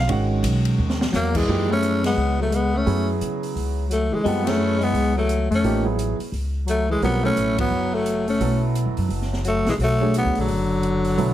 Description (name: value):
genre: modal jazz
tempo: 173 BPM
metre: 4/4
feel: swing 62% on 8ths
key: F# minor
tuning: A4 = 440 Hz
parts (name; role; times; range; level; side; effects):
- warm concert grand piano; accompaniment; 0.0-11.3 s; Eb3 to Gb5; -26 LUFS; right 4 dB; none
- upright bass; bass; 0.0-11.3 s; F#1 to C#3; -24 LUFS; equal; none
- open jazz drum kit; drums; 0.1-11.3 s; crash cymbal, hi-hat, kick drum, ride cymbal, snare drum; -32 LUFS; equal; none
- breathy alto saxophone; second line; 1.1-11.3 s; D3 to A3; -25 LUFS; left 4 dB; none
- growling tenor saxophone; melody; 1.2-11.3 s; F#3 to C#4; -23 LUFS; equal; plate reverb
room: moderate studio reverb, RT60 0.8 s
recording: heavily compressed radio sound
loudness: -19 LUFS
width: side -12 dB against mid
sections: 0.0-1.5 A section; 1.5-11.3 B section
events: drum fill 0.8-1.1; band accent 2.0, 4.4, 7.5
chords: 0.0 Dbm11; 1.5 F#m11; 7.0 Bm11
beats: | 0.09 0.43 0.78 1.13 | 1.47 1.82 2.17 2.51 | 2.86 3.21 3.55 3.90 | 4.25 4.59 4.94 5.29 | 5.63 5.98 6.33 6.67 | 7.02 7.37 7.71 8.06 | 8.41 8.75 9.10 9.45 | 9.79 10.14 10.48 10.83 | 11.18